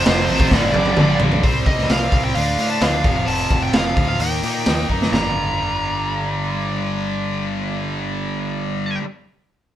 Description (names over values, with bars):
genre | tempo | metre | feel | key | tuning
hard rock | 130 BPM | 4/4 | straight | G minor | A4 = 440 Hz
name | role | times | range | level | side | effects
bluesy overdriven lead guitar | melody | 0.0-9.0 s | C5 to Bb5 | -23 LUFS | equal | distortion
scooped high-gain guitar | riff | 0.0-9.1 s | F2 to Eb4 | -26 LUFS | left 8 dB | distortion
scooped high-gain guitar | riff | 0.0-1.4 s | F2 to G3 | -26 LUFS | right 1 dB | distortion
tight distorted guitar | riff | 0.0-9.0 s | F2 to Eb4 | -24 LUFS | right 4 dB | distortion
growling fingered electric bass | bass | 0.0-9.0 s | F1 to Bb2 | -25 LUFS | equal | overdrive
raw garage drum kit | drums | 0.1-5.2 s | hi-hat, kick drum, snare drum, toms | -19 LUFS | equal | none
room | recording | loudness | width
light reverb | band playing live in one room | -17 LUFS | side -12 dB against mid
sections
0.0-1.4 A section; 1.4-5.1 B section; 5.1-8.8 C section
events
drum fill 0.5-1.4, 4.9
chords
0.0 F; 0.5 Gm; 1.4 C5; 2.4 Dm; 3.1 F5; 4.2 Eb; 5.1 Gm